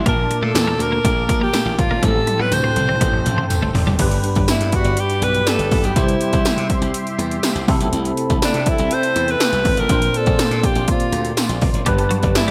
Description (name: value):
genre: 1980s-style pop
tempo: 122 BPM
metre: 4/4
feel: straight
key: unclear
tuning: A4 = 440 Hz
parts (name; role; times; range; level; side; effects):
- bright alto saxophone; melody; 0.0-12.5 s; D4 to C5; -24 LUFS; equal; delay
- barky tine electric piano; accompaniment; 0.0-12.5 s; G2 to A5; -25 LUFS; equal; ensemble chorus
- sweeping resonant pad; sustained chords; 0.0-12.5 s; Bb3 to D6; -30 LUFS; equal; chorus
- glassy slap bass; bass; 0.0-12.5 s; F1 to C3; -26 LUFS; equal; none
- twelve-string electric guitar; riff; 0.1-3.9, 11.9-12.5 s; F#3 to C4; -29 LUFS; equal; analog chorus
- 80s electronic pad drums; drums; 0.1-12.5 s; crash cymbal, hi-hat, kick drum, snare drum, tambourine, toms; -22 LUFS; equal; gated reverb on snare and toms, overdrive, gated reverb
- tambourine; percussion; 0.6-12.5 s; none; -36 LUFS; equal; none
room: moderate lush hall reverb, RT60 2.1 s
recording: bright 1980s-style digital production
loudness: -18 LUFS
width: mono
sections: 0.0-4.0 A section; 4.0-12.5 B section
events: drum fill 2.0-4.0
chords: 0.1 Bbmaj7; 2.0 Am7; 4.0 G; 6.0 C; 7.7 Amadd9; 9.9 Bbadd9; 11.9 G